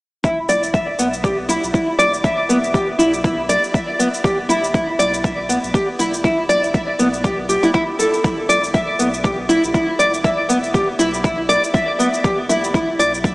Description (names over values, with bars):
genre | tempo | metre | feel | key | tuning
afro house | 120 BPM | 4/4 | swing 56% on 16ths | E minor | A4 = 439 Hz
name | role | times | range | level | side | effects
nylon-string guitar | arpeggios | 0.2-13.3 s | B3 to E5 | -16 LUFS | equal | analog chorus, sidechain pumping, low-pass filter, diffuse ambient delay
warm sub bass | bass | 0.2-13.3 s | E1 to B1 | -35 LUFS | equal | sidechain pumping
cabasa | drums | 0.2-13.3 s | none | -28 LUFS | left 1 dB | none
electronic kick drum | drums | 0.2-13.3 s | none | -19 LUFS | equal | none
room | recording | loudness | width
wet huge ambient reverb, RT60 7.9 s | dreamy mix soaked in reverb, small speaker sound | -15 LUFS | side -23 dB against mid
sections
0.2-13.3 A section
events
filter sweep on sub bass 0.2-13.3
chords
0.2 E5